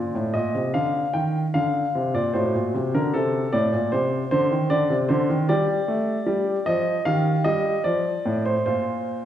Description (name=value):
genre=classical-period piano sonatina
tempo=76 BPM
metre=4/4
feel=straight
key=Bb major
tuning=A4 = 440 Hz
part: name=clear baby grand piano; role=solo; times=0.0-9.3 s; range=A2 to G5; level=-20 LUFS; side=equal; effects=none
room=wet recital hall reverb, RT60 1.4 s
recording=heard from further back in the room, nothing above 10.8 kHz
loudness=-20 LUFS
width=side -10 dB against mid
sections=0.0-9.3 A section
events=none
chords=0.0 Bb; 2.4 D7/A; 5.5 G5; 7.1 Ebadd9; 7.9 F; 8.7 Bb5